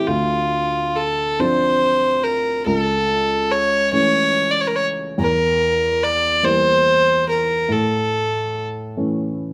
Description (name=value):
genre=celtic folk, Celtic slow air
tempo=48 BPM (dotted quarters)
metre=6/8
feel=rubato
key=D minor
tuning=A4 = 439 Hz
part: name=warm fiddle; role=melody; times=0.0-8.7 s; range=F4 to D5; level=-20 LUFS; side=equal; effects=none
part: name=warm upright piano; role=accompaniment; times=0.0-9.5 s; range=C#2 to D4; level=-26 LUFS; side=equal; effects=none
room=light reverb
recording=close, detailed microphones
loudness=-19 LUFS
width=mono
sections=0.1-9.5 A section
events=none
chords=0.1 Dm7; 2.7 A/C#; 5.2 Edim; 7.7 A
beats=| 0.06 1.38 | 2.67 3.92 | 5.17 6.44 | 7.69 8.97